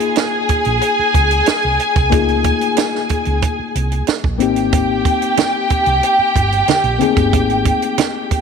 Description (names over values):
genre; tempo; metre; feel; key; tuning
lush 1970s-style soul; 92 BPM; 4/4; straight; unclear; A4 = 441 Hz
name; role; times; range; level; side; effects
dark studio violin section; second line; 0.0-8.4 s; G4 to Ab5; -17 LUFS; equal; none
reed electric piano; accompaniment; 0.0-8.4 s; Bb3 to Ab4; -20 LUFS; left 11 dB; none
compact cocktail drum kit; drums; 0.0-8.4 s; hi-hat, kick drum, snare drum; -18 LUFS; right 5 dB; none
hollow-body short-scale fingered electric bass; bass; 0.5-8.3 s; G1 to Db2; -20 LUFS; right 1 dB; none
congas; percussion; 4.7-8.1 s; none; -26 LUFS; right 11 dB; none
room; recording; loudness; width
light reverb, small room ambience; 1960s-style stereo with parts hard left and right; -13 LUFS; side -6 dB against mid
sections
0.0-8.4 A section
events
none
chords
0.0 Db69; 4.4 Abmaj7